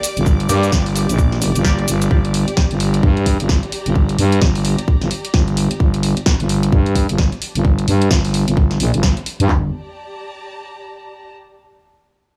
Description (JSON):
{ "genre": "bass house", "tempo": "130 BPM", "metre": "4/4", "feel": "swing 60% on 16ths", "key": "G minor", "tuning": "A4 = 440 Hz", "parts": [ { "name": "house drum kit", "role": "drums", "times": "0.0-9.5 s", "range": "hi-hat, snare drum", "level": "-25 LUFS", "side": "equal", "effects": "small room ambience" }, { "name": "cabasa", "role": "percussion", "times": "0.0-2.1 s", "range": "none", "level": "-29 LUFS", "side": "equal", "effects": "none" }, { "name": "rich chamber string section", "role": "texture", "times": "0.0-11.3 s", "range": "G4 to D6", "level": "-34 LUFS", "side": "equal", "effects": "sidechain pumping" }, { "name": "growling FM bass", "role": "bass", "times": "0.2-9.7 s", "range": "G1 to G2", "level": "-18 LUFS", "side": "equal", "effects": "tube saturation, sidechain pumping" }, { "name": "house drum kit", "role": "drums", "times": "0.3-9.6 s", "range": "handclaps, kick drum, toms", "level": "-19 LUFS", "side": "equal", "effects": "small room ambience" }, { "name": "band-passed chord stab", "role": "stabs", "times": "0.5-1.9 s", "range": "Bb3 to D5", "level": "-28 LUFS", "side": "equal", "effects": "phaser, analog chorus, cassette tape, sidechain pumping, tape echo" } ], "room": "little or no reverb", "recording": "small room ambience", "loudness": "-16 LUFS", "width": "mono", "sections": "0.0-9.5 A section; 9.5-11.3 B section", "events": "fade-out on string section 0.0-9.5; filter sweep on FM bass 0.0-9.5", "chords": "0.0 Gm", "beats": "| 0.26 0.72 1.19 1.65 | 2.11 2.57 3.03 3.49 | 3.96 4.42 4.88 5.34 | 5.80 6.26 6.72 7.19 | 7.65 8.11 8.57 9.03 | 9.49 9.96 10.42 10.88" }